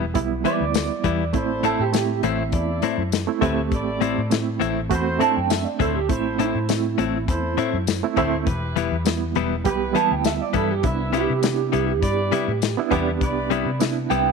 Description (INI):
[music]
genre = straight-eighth soul blues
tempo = 101 BPM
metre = 4/4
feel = swing 53% on 16ths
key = unclear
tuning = A4 = 440 Hz
[part]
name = reed electric piano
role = accompaniment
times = 0.0-14.3 s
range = G3 to G4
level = -25 LUFS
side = right 12 dB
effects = tremolo
[part]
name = direct-recorded clean electric guitar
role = stabs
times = 0.0-14.3 s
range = A2 to E4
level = -26 LUFS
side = left 13 dB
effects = none
[part]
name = vintage muted fingered electric bass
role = bass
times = 0.0-14.3 s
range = E1 to C3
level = -27 LUFS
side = left 1 dB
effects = none
[part]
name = warm soul drum kit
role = drums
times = 0.1-14.3 s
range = hi-hat, kick drum, snare drum, tambourine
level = -25 LUFS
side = left 6 dB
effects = none
[part]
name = electric guitar through a small old amp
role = second line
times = 0.5-14.3 s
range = E4 to A5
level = -25 LUFS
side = right 13 dB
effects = tremolo
[part]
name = warm horn section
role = sustained chords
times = 1.3-13.8 s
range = E4 to E5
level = -31 LUFS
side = equal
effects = none
[sound]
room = light reverb, small room ambience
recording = 1960s-style stereo with parts hard left and right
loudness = -20 LUFS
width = side -5 dB against mid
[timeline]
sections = 0.0-14.3 A section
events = clean electric guitar solo 0.0-14.3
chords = 0.0 Em; 1.3 Am; 8.5 Em; 10.8 Cmaj7